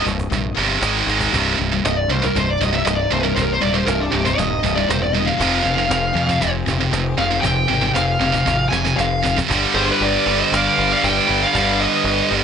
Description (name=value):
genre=heavy metal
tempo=118 BPM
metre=4/4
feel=straight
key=C minor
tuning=A4 = 440 Hz
part: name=heavy high-gain guitar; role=riff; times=0.0-12.4 s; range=C2 to Ab3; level=-20 LUFS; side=right 8 dB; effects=distortion
part: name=high-gain distorted guitar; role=riff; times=0.0-12.4 s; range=C2 to Ab3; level=-24 LUFS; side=left 11 dB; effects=distortion
part: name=growling picked electric bass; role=bass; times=0.1-12.4 s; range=C1 to F2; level=-24 LUFS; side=equal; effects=overdrive
part: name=cajon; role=drums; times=0.1-11.7 s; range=none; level=-28 LUFS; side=equal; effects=none
part: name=clear studio string section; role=sustained chords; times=1.3-12.4 s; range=C3 to B4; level=-31 LUFS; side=left 2 dB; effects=none
part: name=high-gain lead guitar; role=melody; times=1.9-12.3 s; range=D4 to Ab5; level=-21 LUFS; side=equal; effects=distortion
part: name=high-gain lead guitar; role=second line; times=9.7-12.3 s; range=G4 to D5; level=-25 LUFS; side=right 4 dB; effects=distortion
room=little or no reverb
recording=nothing above 10.5 kHz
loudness=-16 LUFS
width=side -7 dB against mid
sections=0.0-1.3 A section; 1.3-9.5 B section; 9.5-12.4 C section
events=drum fill 1.1, 8.5-9.5; lead electric guitar solo 1.3-9.5; half time 9.5-12.4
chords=0.0 C5; 0.8 Ab5; 1.3 Cm; 5.4 Fm; 9.5 G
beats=0.32 0.83 | 1.34 1.84 2.35 2.86 | 3.37 3.88 4.39 4.90 | 5.41 5.92 6.42 6.94 | 7.45 7.96 8.47 8.98 | 9.49 10.01 10.52 11.03 | 11.55 12.06